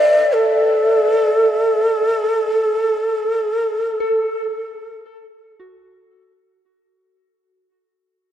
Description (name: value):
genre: ambient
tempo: free time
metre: none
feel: none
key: unclear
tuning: A4 = 443 Hz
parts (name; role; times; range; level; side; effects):
- breathy mellow shakuhachi; melody; 0.0-5.6 s; A4 to D5; -15 LUFS; equal; tape echo
- soft synth bell; arpeggios; 0.0-7.4 s; F#4 to A4; -25 LUFS; equal; chorus, phaser, tape echo
room: wet huge ambient reverb, RT60 7.7 s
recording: worn, warbling old tape, cassette tape, warbly pitch drift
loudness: -15 LUFS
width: side -10 dB against mid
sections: 0.0-6.7 A section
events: fade-out 1.1-6.7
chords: 0.0 F#m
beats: free time